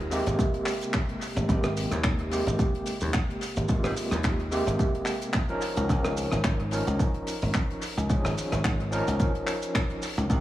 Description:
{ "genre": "nu-disco, nu disco", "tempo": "109 BPM", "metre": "4/4", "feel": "swing 55% on 16ths", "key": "unclear", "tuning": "A4 = 440 Hz", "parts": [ { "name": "overdriven tine electric piano", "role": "accompaniment", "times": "0.0-10.4 s", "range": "C3 to Bb4", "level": "-30 LUFS", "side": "equal", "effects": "medium tremolo, dub echo" }, { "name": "dry thumbed slap bass", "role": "bass", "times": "0.0-10.4 s", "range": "Ab1 to Ab2", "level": "-28 LUFS", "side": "equal", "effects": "tube saturation" }, { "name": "damped 70s drum kit", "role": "drums", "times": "0.0-10.4 s", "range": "handclaps, hi-hat, rim click, shaker", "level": "-33 LUFS", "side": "equal", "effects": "dub echo" }, { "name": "electronic kick drum", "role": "drums", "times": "0.4-10.4 s", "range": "none", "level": "-27 LUFS", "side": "equal", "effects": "overdrive" } ], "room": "light reverb, small room ambience", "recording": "echo-heavy mix, small room reverb", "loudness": "-25 LUFS", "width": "side -14 dB against mid", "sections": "0.0-10.4 A section", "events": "none", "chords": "0.0 Abmaj9; 5.6 Db69", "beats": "0.39 0.94 | 1.49 2.04 2.59 3.14 | 3.69 4.24 4.79 5.34 | 5.90 6.45 7.00 7.55 | 8.10 8.65 9.20 9.75 | 10.30" }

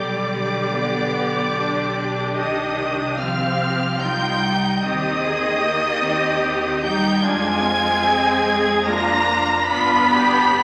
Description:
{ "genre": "classical, slow romantic movement for string orchestra", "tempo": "73 BPM", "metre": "3/4", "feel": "rubato", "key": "C minor", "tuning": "A4 = 440 Hz", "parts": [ { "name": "rich chamber violin section", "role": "melody", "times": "0.0-10.6 s", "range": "D6 to B6", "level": "-27 LUFS", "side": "equal", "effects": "none" }, { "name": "warm studio violin section", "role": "second line", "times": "0.0-10.6 s", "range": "D5 to B5", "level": "-24 LUFS", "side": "equal", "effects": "none" }, { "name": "rich chamber viola section", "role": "accompaniment", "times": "0.0-10.6 s", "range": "G3 to Ab4", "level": "-25 LUFS", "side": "equal", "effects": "none" }, { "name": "clear chamber double bass section", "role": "bass", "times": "0.0-10.6 s", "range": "G1 to F2", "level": "-33 LUFS", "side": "equal", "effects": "none" }, { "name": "rich studio cello section", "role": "bass", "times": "0.0-10.6 s", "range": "D3 to B3", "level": "-27 LUFS", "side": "equal", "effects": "none" } ], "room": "wet scoring stage reverb, RT60 1.6 s", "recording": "vinyl crackle", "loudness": "-20 LUFS", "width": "mono", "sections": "0.0-10.6 A section", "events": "none", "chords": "0.0 G/B; 2.4 Cm; 4.8 Cm/Eb; 7.2 Ddim/F; 9.7 G7", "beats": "0.70 1.54 | 2.37 3.18 4.01 | 4.82 5.64 6.43 | 7.24 8.05 8.86 | 9.69 10.52" }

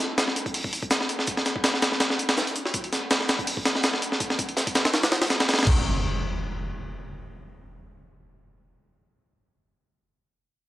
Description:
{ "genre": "drum and bass, jungle", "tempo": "164 BPM", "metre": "4/4", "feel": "swing 54% on 16ths", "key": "none", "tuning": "none", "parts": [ { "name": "breakbeat sampler-style drum kit", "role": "drums", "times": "0.0-5.7 s", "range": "crash cymbal, hi-hat, kick drum, snare drum", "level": "-23 LUFS", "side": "equal", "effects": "high-pass filter on snare, high-pass filter on hats, high-pass filter on kick, high-pass filter on cymbals, high-pass filter on room" }, { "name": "crunchy breakbeat drum kit", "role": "drums", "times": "0.0-5.6 s", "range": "hi-hat, shaker, snare drum", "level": "-32 LUFS", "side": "right 1 dB", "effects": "high-pass filter on hats, high-pass filter on snare, high-pass filter on perc, high-pass filter on room" }, { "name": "impact", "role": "sound effects", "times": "5.7-8.7 s", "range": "none", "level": "-30 LUFS", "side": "equal", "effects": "none" } ], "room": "light reverb, studio reverb", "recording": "dry, gritty hardware recording, cassette tape", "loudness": "-22 LUFS", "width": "side -15 dB against mid", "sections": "0.0-5.7 A section; 5.7-8.6 B section", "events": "none", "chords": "none", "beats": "0.18 0.55 0.91 | 1.28 1.64 2.01 2.38 | 2.74 3.11 3.47 3.84 | 4.20 4.57 4.94 5.30 | 5.67 6.03 6.40 6.76 | 7.13 7.50 7.86 8.23" }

